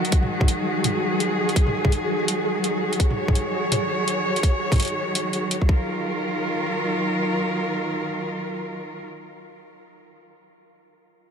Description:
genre	half-time drum and bass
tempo	167 BPM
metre	4/4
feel	swing 59% on 16ths, half-time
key	Eb minor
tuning	A4 = 440 Hz
part	rich studio cello section	sustained chords	0.0-9.0 s	Eb3 to Db5	-25 LUFS	equal	vintage 12-bit sampler grit, sidechain pumping
part	drum and bass drum kit	drums	0.0-5.6 s	hi-hat, toms	-25 LUFS	equal	none
part	flickering grainy texture	texture	0.0-5.9 s	Gb3 to Gb5	-27 LUFS	equal	built-in reverb
part	electronic kick drum	drums	0.1-5.8 s	none	-19 LUFS	equal	none
room	light reverb, digital ambience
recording	none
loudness	-21 LUFS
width	side -7 dB against mid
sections	0.0-5.9 A section; 5.9-8.7 B section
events	none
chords	0.0 Ebm; 5.7 Ebmadd9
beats	| 0.12 0.48 0.84 1.20 | 1.56 1.92 2.28 2.64 | 3.00 3.36 3.72 4.08 | 4.43 4.79 5.15 5.51 | 5.87 6.23 6.59 6.95 | 7.31 7.67 8.03 8.39

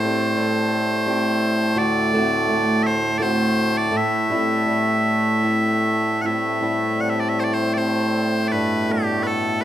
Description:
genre	celtic folk, Celtic slow air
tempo	73-87 BPM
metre	3/4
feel	rubato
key	A dorian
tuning	A4 = 440 Hz
part	loud bright bagpipes	melody	0.0-9.6 s	A2 to F#5	-19 LUFS	equal	plate reverb
part	flamenco guitar	accompaniment	0.0-9.6 s	D2 to G4	-26 LUFS	equal	plate reverb
part	pedal harmonium	sustained chords	6.2-9.6 s	A2 to C4	-30 LUFS	left 1 dB	plate reverb
room	moderate studio ambience, RT60 0.5 s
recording	rough home demo mix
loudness	-18 LUFS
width	side -12 dB against mid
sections	0.0-6.2 A section; 6.2-9.6 A section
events	none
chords	0.0 Am7; 1.8 D7; 3.9 Am7; 8.5 Gadd9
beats	0.36 1.05 | 1.76 2.47 3.18 | 3.92 4.65 5.42 | 6.21 6.97 7.73 | 8.49 9.24

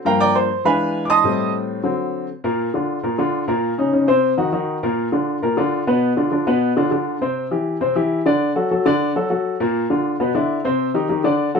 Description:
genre	jazz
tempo	201 BPM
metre	4/4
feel	straight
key	unclear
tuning	A4 = 440 Hz
part	warm upright piano	solo	0.0-11.6 s	G2 to Eb6	-17 LUFS	left 1 dB	none
room	moderate studio reverb, RT60 0.6 s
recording	minimal, uncompressed stereo recording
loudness	-17 LUFS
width	side -5 dB against mid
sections	0.0-2.4 A section; 2.4-11.6 B section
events	upright piano solo 0.0-2.4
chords	0.1 Gm7; 0.6 E7b9; 1.2 Am7b5; 1.8 D7; 2.4 Bb; 3.6 Eb5; 4.2 Cdim; 4.8 Bb; 6.0 Bdim; 7.2 Cadd9; 8.4 D; 9.6 Bb; 10.2 E5; 10.8 Cmadd9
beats	| 0.05 0.35 0.65 0.95 | 1.24 1.54 1.84 2.14 | 2.44 2.73 3.03 3.33 | 3.63 3.93 4.23 4.53 | 4.83 5.12 5.42 5.72 | 6.02 6.32 6.62 6.92 | 7.21 7.51 7.81 8.11 | 8.41 8.71 9.01 9.30 | 9.60 9.90 10.20 10.50 | 10.80 11.09 11.39

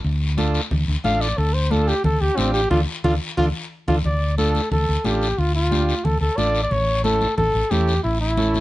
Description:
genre	latin, cumbia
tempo	180 BPM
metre	4/4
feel	straight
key	D harmonic minor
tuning	A4 = 440 Hz
part	hollow-body short-scale fingered electric bass	bass	0.0-8.6 s	A1 to E2	-21 LUFS	equal	none
part	guiro	percussion	0.0-8.6 s	none	-31 LUFS	left 6 dB	none
part	combo organ	accompaniment	0.4-8.6 s	C#4 to A4	-27 LUFS	right 3 dB	none
part	congas	percussion	0.4-8.6 s	none	-27 LUFS	equal	none
part	warm flugelhorn	melody	1.0-8.6 s	C4 to F5	-22 LUFS	equal	none
room	little or no reverb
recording	nothing above 10.6 kHz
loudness	-18 LUFS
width	side -16 dB against mid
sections	0.0-4.0 A section; 4.0-8.6 B section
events	flugelhorn solo 0.0-4.0; band accent 2.7-4.0; drum fill 3.0-4.0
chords	0.0 Dm; 6.7 A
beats	| 0.05 0.38 0.71 1.05 | 1.38 1.71 2.05 2.38 | 2.71 3.05 3.38 3.71 | 4.05 4.38 4.71 5.05 | 5.38 5.71 6.05 6.38 | 6.71 7.05 7.38 7.71 | 8.05 8.38

